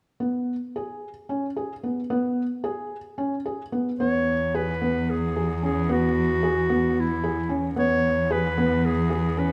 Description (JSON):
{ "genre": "contemporary instrumental, chamber music in an uneven meter", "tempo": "224 BPM (eighths)", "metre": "7/8", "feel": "straight", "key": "E major", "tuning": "A4 = 440 Hz", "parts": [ { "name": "felt-muted upright piano", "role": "arpeggios", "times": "0.2-9.5 s", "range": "B3 to G#4", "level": "-28 LUFS", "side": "equal", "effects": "none" }, { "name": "clear clarinet", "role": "melody", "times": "4.0-9.5 s", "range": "E4 to C#5", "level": "-28 LUFS", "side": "equal", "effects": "none" }, { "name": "warm cello", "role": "bass", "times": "4.0-9.5 s", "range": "E2", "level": "-29 LUFS", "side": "equal", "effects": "none" } ], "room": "wet recital hall reverb, RT60 1.4 s", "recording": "none", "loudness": "-25 LUFS", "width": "mono", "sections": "0.2-4.0 A section; 4.0-9.5 B section", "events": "none", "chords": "0.2 G#madd11/B; 4.0 E6" }